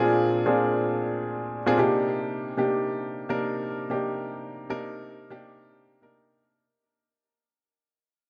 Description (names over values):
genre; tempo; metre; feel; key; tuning
R&B; 99 BPM; 4/4; swing 64% on 16ths; C minor; A4 = 442 Hz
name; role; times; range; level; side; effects
warm grand piano; solo; 0.0-6.6 s; Bb2 to Bb4; -27 LUFS; equal; none
room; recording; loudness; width
moderate echo chamber reverb, RT60 1.7 s; none; -27 LUFS; mono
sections
0.0-1.8 A section; 1.8-6.6 B section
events
fade-out 1.8-6.6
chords
0.0 Bb9; 1.8 Cm9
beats
0.56 1.17 | 1.77 2.38 2.98 3.59 | 4.20 4.80 5.41 6.01